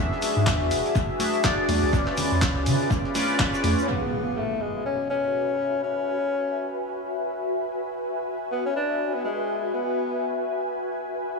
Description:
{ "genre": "deep house", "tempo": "123 BPM", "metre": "4/4", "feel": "swing 58% on 16ths", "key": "unclear", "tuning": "A4 = 440 Hz", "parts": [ { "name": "chorused polysynth", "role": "stabs", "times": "0.0-3.9 s", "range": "C#4 to E5", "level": "-26 LUFS", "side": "left 1 dB", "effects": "sidechain pumping, dub echo" }, { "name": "rubbery square bass", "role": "bass", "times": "0.0-3.8 s", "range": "E1 to C#3", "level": "-25 LUFS", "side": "right 1 dB", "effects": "sidechain pumping" }, { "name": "ethereal airy pad", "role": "texture", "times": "0.0-11.4 s", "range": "F#4 to D6", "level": "-29 LUFS", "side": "left 1 dB", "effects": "ensemble chorus, built-in reverb, sidechain pumping" }, { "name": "cloth-damped thuddy drum kit", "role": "drums", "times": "0.1-3.9 s", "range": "hi-hat, shaker, snare drum", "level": "-41 LUFS", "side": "left 1 dB", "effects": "none" }, { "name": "dusty soul sampler-style drum kit", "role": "drums", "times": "0.2-3.8 s", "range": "handclaps, hi-hat", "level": "-30 LUFS", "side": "equal", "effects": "low-pass filter on hats, low-pass filter on snare, low-pass filter on room, tape echo" }, { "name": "electronic kick drum", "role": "drums", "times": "0.5-3.5 s", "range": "none", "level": "-25 LUFS", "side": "equal", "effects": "none" }, { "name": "congas", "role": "percussion", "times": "1.2-3.8 s", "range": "none", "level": "-33 LUFS", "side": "equal", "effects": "sidechain pumping on perc, tape echo" }, { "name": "breathy tenor saxophone", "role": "melody", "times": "3.8-10.4 s", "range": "G#3 to D4", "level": "-28 LUFS", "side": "left 3 dB", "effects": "dub echo" }, { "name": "impact", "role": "sound effects", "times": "3.9-5.8 s", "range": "none", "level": "-33 LUFS", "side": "right 1 dB", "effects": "none" } ], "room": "moderate echo chamber reverb, RT60 2.2 s", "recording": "echo-heavy mix", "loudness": "-23 LUFS", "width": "side -3 dB against mid", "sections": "0.0-3.9 A section; 3.9-11.4 B section", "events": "filter sweep on analog polysynth 0.0-3.9; impact 3.9-5.8", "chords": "0.0 E9; 1.9 C#7b9; 3.9 Eadd9", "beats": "0.47 0.96 1.44 | 1.93 2.42 2.91 3.40 | 3.88 4.37 4.86 5.35 | 5.83 6.32 6.81 7.30 | 7.79 8.27 8.76 9.25 | 9.74 10.22 10.71 11.20" }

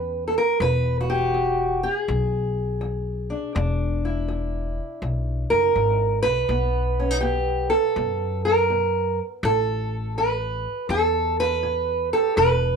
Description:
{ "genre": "acoustic country blues, solo or duo", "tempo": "82 BPM", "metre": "4/4", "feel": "swing 67% on 8ths", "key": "E mixolydian", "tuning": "A4 = 440 Hz", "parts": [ { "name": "fingerpicked steel-string acoustic guitar", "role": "melody", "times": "0.0-12.8 s", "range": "E2 to B4", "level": "-22 LUFS", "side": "right 1 dB", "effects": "none" }, { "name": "upright bass", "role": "bass", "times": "0.0-12.8 s", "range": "E1 to F#2", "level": "-26 LUFS", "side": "left 1 dB", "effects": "none" } ], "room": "moderate small room reverb, RT60 0.5 s", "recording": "none", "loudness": "-20 LUFS", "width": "side -6 dB against mid", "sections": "0.0-12.8 A section", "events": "none", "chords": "0.0 A7; 0.6 E7; 6.5 B7(no3); 9.4 A5", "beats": "| 0.61 1.34 2.08 2.81 | 3.55 4.29 5.02 5.76 | 6.49 7.23 7.96 8.70 | 9.43 10.16 10.90 11.63 | 12.37" }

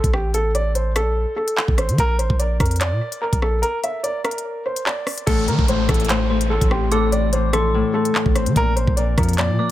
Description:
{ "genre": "hip hop, drill", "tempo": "146 BPM", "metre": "4/4", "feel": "half-time", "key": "A phrygian", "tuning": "A4 = 439 Hz", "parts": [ { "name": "dark baby grand piano", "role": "melody", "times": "0.0-9.7 s", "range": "G4 to E5", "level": "-23 LUFS", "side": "right 1 dB", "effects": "analog delay" }, { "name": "long sustained 808-style bass", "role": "bass", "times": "0.0-9.6 s", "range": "A1 to E3", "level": "-21 LUFS", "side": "equal", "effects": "none" }, { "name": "drill drum kit", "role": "drums", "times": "0.0-9.5 s", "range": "crash cymbal, handclaps, hi-hat, kick drum, rim click", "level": "-22 LUFS", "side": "equal", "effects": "none" }, { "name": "Celtic harp", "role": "accompaniment", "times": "5.3-9.7 s", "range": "A2 to C4", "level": "-22 LUFS", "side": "left 6 dB", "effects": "none" }, { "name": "downlifter", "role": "sound effects", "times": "5.3-8.6 s", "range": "none", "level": "-31 LUFS", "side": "equal", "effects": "none" }, { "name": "dark detuned synth bell", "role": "second line", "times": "6.3-9.7 s", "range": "C6 to D6", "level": "-29 LUFS", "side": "equal", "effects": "chorus, phaser, analog delay" } ], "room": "little or no reverb", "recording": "echo-heavy mix", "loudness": "-17 LUFS", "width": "side -14 dB against mid", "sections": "0.0-5.3 A section; 5.3-9.7 B section", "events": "break 3.6-5.3", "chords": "0.0 N.C.; 2.0 Bb; 5.3 Am; 8.6 Bbadd9", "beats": "| 0.34 0.75 1.16 1.57 | 1.98 2.40 2.81 3.22 | 3.63 4.04 4.45 4.86 | 5.27 5.68 6.09 6.50 | 6.92 7.33 7.74 8.15 | 8.56 8.97 9.38" }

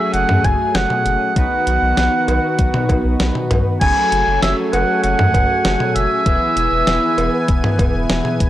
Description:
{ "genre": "synth-pop", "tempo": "98 BPM", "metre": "4/4", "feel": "straight", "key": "F# dorian", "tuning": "A4 = 441 Hz", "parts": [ { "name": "warm oboe", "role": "melody", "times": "0.0-7.8 s", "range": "E5 to G#5", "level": "-18 LUFS", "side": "right 1 dB", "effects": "tape echo" }, { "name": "analog synth brass", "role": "accompaniment", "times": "0.0-8.5 s", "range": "A3 to E5", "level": "-25 LUFS", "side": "left 1 dB", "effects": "chorus" }, { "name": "lush unison pad", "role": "sustained chords", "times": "0.0-8.5 s", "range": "D#3 to G#5", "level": "-22 LUFS", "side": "left 1 dB", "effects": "chorus" }, { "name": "round analog bass", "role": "bass", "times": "0.1-8.5 s", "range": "E1 to F#2", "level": "-20 LUFS", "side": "equal", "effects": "none" }, { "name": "clean 12-bit digital drum machine", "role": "drums", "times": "0.1-8.5 s", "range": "cowbell, crash cymbal, hi-hat, kick drum, snare drum, toms", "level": "-19 LUFS", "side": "equal", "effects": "none" } ], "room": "little or no reverb", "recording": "dry, gritty hardware recording, cassette tape", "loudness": "-14 LUFS", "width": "side -13 dB against mid", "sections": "0.0-3.8 A section; 3.8-8.5 B section", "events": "none", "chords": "0.0 F#madd9; 1.4 B; 3.8 F#madd9; 6.3 E", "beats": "0.14 0.75 | 1.36 1.98 2.59 3.20 | 3.81 4.42 5.04 5.65 | 6.26 6.87 7.49 8.10" }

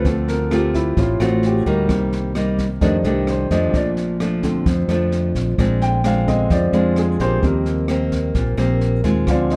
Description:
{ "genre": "bossa nova", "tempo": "130 BPM", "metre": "4/4", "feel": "straight", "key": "Bb major", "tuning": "A4 = 440 Hz", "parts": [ { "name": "nylon-string guitar", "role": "accompaniment", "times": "0.0-9.6 s", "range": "F2 to G4", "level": "-23 LUFS", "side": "equal", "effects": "none" }, { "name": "warm baby grand piano", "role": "accompaniment", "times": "0.0-9.6 s", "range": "D3 to G5", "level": "-25 LUFS", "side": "equal", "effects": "none" }, { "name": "fingered electric bass", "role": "bass", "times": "0.0-9.6 s", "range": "A1 to F2", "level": "-23 LUFS", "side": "equal", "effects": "none" }, { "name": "jazz brush drum kit", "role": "drums", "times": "0.0-9.6 s", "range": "kick drum, rim click, snare drum", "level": "-27 LUFS", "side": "equal", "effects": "none" } ], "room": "light reverb", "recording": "dark, warm production", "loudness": "-19 LUFS", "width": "mono", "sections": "0.0-9.6 A section", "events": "grand piano solo 0.0-9.6", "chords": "0.0 Dm7; 1.9 Cm7; 2.8 F13; 3.7 Bbmaj7; 5.6 Bb9; 7.4 Eb6", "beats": "| 0.05 0.51 0.97 1.43 | 1.89 2.35 2.81 3.28 | 3.74 4.20 4.66 5.12 | 5.58 6.04 6.50 6.96 | 7.42 7.88 8.35 8.81 | 9.27" }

